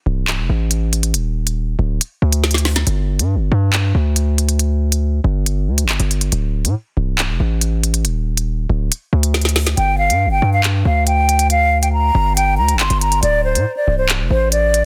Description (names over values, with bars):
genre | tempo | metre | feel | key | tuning
hip hop, drill | 139 BPM | 4/4 | half-time | G minor | A4 = 440 Hz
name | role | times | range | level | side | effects
distorted 808-style bass | bass | 0.1-14.8 s | C1 to A2 | -19 LUFS | equal | distortion
drill drum kit | drums | 0.3-14.8 s | handclaps, hi-hat, snare drum | -21 LUFS | equal | none
breathy mellow silver concert flute | melody | 9.8-14.8 s | C5 to C6 | -18 LUFS | equal | digital delay
room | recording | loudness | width
digital ambience | dense, heavily limited modern master | -17 LUFS | mono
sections
0.0-14.8 A section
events
break 0.0-2.9; drum fill 2.4-2.9, 9.3-9.8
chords
0.0 D7(no3); 2.9 G5; 6.3 D5; 9.8 Gm; 13.2 D7(no3)